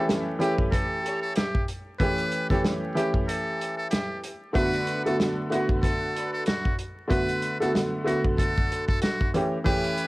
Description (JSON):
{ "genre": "hip hop, boom-bap hip-hop", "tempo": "94 BPM", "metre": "4/4", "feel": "swing 58% on 16ths", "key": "B minor", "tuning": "A4 = 444 Hz", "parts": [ { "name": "trumpet with metal mute", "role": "melody", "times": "0.0-10.1 s", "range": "F#4 to B4", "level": "-31 LUFS", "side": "equal", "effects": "cassette tape" }, { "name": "warm upright piano", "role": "accompaniment", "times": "0.0-10.1 s", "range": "D3 to G4", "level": "-27 LUFS", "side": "equal", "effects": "none" }, { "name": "rich chamber string section", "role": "stabs", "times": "0.0-10.1 s", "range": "B3 to D5", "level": "-37 LUFS", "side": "equal", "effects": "analog delay" }, { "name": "warm soul drum kit", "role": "drums", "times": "0.1-10.1 s", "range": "hi-hat, kick drum, snare drum", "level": "-27 LUFS", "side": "equal", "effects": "none" } ], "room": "light reverb", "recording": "home recording on cassette, vinyl crackle", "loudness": "-23 LUFS", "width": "side -20 dB against mid", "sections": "0.0-10.1 A section", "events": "break 3.3-4.5", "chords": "0.0 A7; 4.5 Bm7; 9.3 A7", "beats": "0.08 0.72 1.36 | 2.00 2.64 3.27 3.91 | 4.55 5.19 5.83 6.46 | 7.10 7.74 8.38 9.02 | 9.66" }